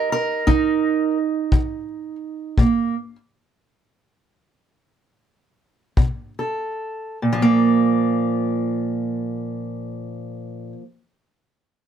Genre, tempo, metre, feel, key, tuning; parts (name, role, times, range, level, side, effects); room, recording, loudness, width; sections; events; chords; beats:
acoustic country blues, solo or duo; 46-58 BPM (dotted quarters); 12/8; straight; A4 = 440 Hz
fingerpicked steel-string acoustic guitar; melody; 0.0-10.8 s; Bb2 to Eb5; -20 LUFS; right 3 dB
kick drum; drums; 0.5-6.2 s; -18 LUFS; left 1 dB
light reverb; close, detailed microphones; -19 LUFS; side -9 dB against mid
0.0-7.2 A section; 7.2-11.9 B section
slowing down 1.2-7.2; stop 2.6-6.0
0.0 Eb; 2.6 N.C.; 6.0 Asus2/B; 7.2 Bb5
0.48 1.52 | 2.58 3.67 4.79 5.97 | 7.22 8.51 9.81